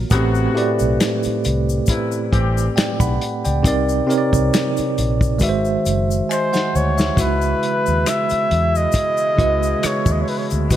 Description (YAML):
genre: R&B, neo-soul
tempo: 68 BPM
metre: 4/4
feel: swing 54% on 16ths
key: C# minor from 7.2 s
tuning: A4 = 443 Hz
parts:
  - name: bell-like tine electric piano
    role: accompaniment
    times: 0.0-10.8 s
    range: A2 to B5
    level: -20 LUFS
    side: right 2 dB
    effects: fast stereo tremolo
  - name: vintage muted fingered electric bass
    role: bass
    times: 0.0-10.8 s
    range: F#1 to E2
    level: -20 LUFS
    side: left 1 dB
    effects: none
  - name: mellow horn section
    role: stabs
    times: 0.1-10.8 s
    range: B2 to G4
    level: -28 LUFS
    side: left 4 dB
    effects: ping-pong delay
  - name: warm soul drum kit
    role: drums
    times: 0.1-10.8 s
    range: hi-hat, kick drum, rim click, snare drum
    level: -21 LUFS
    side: left 1 dB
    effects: gated reverb
  - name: tube shaker and finger snaps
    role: percussion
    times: 0.1-10.8 s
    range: none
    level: -31 LUFS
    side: left 9 dB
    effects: none
  - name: warm flugelhorn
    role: melody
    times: 6.3-10.8 s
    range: B4 to E5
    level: -20 LUFS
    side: equal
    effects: ping-pong delay
room: moderate plate reverb, RT60 3.0 s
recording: bright 1980s-style digital production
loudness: -16 LUFS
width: side -12 dB against mid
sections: 0.0-7.2 A section; 7.2-10.8 B section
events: drum fill 6.3-7.2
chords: 0.1 Am9; 3.6 Cm9; 5.4 G#7b13; 7.2 C#m11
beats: | 0.11 1.00 1.88 2.76 | 3.64 4.53 5.41 6.29 | 7.17 8.05 8.94 9.82 | 10.70